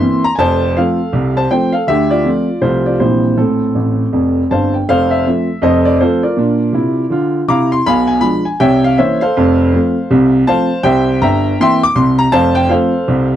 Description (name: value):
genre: jazz, stride piano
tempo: 161 BPM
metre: 4/4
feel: swing 62% on 8ths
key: F major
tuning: A4 = 439 Hz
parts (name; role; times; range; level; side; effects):
- warm baby grand piano; solo; 0.0-13.4 s; F1 to D6; -11 LUFS; equal; none
room: moderate booth ambience, RT60 0.3 s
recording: dry, close 1970s-style studio recording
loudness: -11 LUFS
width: side -11 dB against mid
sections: 0.0-4.9 A section; 4.9-13.4 A section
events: grand piano fill 3.8-4.9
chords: 0.4 F; 1.9 Dm7; 2.6 F/C; 3.0 C7/Bb; 3.4 F/A; 4.9 F; 6.4 Bb; 7.9 Bdim7; 8.6 C7b9; 9.3 F; 10.8 C7; 12.3 F